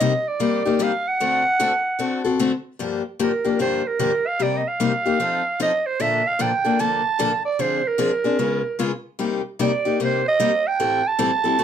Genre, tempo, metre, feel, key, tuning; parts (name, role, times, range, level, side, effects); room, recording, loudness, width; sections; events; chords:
jazz; 150 BPM; 4/4; swing 64% on 8ths; G minor; A4 = 440 Hz
growling clarinet; melody; 0.0-11.6 s; Bb4 to A5; -21 LUFS; right 4 dB
picked steel-string acoustic guitar; accompaniment; 0.0-11.6 s; G2 to A4; -22 LUFS; left 5 dB
moderate studio reverb, RT60 0.5 s; dark, warm production; -19 LUFS; side -8 dB against mid
0.0-2.8 A section; 2.8-11.6 B section
0.0 Cm7; 1.2 D7; 2.8 Gm7; 4.4 Cm7; 5.2 F7; 6.0 Bbmaj7; 7.6 Dm7b5; 8.4 C#7; 9.2 Cm7; 10.8 Am7